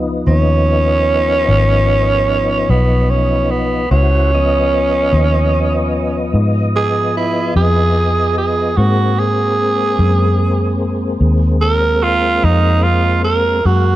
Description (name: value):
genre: slow blues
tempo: 49 BPM (dotted quarters)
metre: 12/8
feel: straight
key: Db mixolydian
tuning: A4 = 440 Hz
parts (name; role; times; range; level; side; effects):
- tonewheel organ; sustained chords; 0.0-14.0 s; F3 to Eb5; -20 LUFS; left 2 dB; slow rotary speaker, chorus vibrato
- vintage muted fingered electric bass; bass; 0.0-14.0 s; Ab1 to Ab2; -15 LUFS; equal; none
- growling tenor saxophone; second line; 0.3-14.0 s; Cb4 to Bb4; -16 LUFS; right 2 dB; tape echo
room: light reverb, small room ambience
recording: dark, warm production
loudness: -12 LUFS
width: side -14 dB against mid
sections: 0.0-14.0 A section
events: tenor saxophone solo 0.0-14.0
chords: 0.0 Db9; 8.8 Ab9